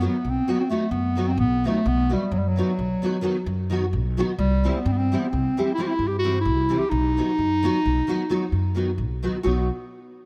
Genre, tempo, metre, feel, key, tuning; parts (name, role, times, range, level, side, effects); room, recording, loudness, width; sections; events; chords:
balkan folk, Balkan wedding band; 261 BPM (eighths); 11/8; straight; B phrygian dominant; A4 = 440 Hz
mellow clarinet; melody; 0.0-9.7 s; F#3 to G4; -26 LUFS; equal; analog delay
nylon-string guitar; accompaniment; 0.0-9.7 s; D#3 to G4; -30 LUFS; equal; ensemble chorus
upright bass; bass; 0.0-9.7 s; B1 to G2; -27 LUFS; equal
light reverb; -23 LUFS; mono
0.0-9.4 A section
0.0 B; 4.4 C; 6.9 B